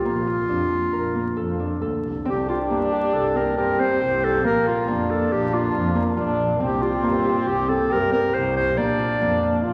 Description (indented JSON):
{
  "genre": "contemporary instrumental, chamber music in an uneven meter",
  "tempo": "138 BPM",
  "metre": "5/4",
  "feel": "straight",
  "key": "unclear",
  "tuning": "A4 = 441 Hz",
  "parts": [
    { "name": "warm clarinet", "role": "melody", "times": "0.0-9.7 s", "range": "F4 to D5", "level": "-26 LUFS", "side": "equal", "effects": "none" },
    { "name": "Celtic harp", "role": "arpeggios", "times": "0.0-9.7 s", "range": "Bb3 to Bb4", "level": "-27 LUFS", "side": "equal", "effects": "none" },
    { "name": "warm double bass", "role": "bass", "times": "0.1-9.7 s", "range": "Bb1 to G2", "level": "-30 LUFS", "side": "equal", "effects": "none" },
    { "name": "French horn with straight mute", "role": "second line", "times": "2.3-9.7 s", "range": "Bb3 to F4", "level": "-28 LUFS", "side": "equal", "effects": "none" }
  ],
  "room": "wet concert hall reverb, RT60 2.4 s",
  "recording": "vinyl crackle",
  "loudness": "-22 LUFS",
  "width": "mono",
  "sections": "0.0-2.3 A section; 2.3-9.7 B section",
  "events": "none",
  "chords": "0.0 Bbmaj7; 2.3 C5; 4.4 Bb; 6.6 C7sus4; 8.8 Bb"
}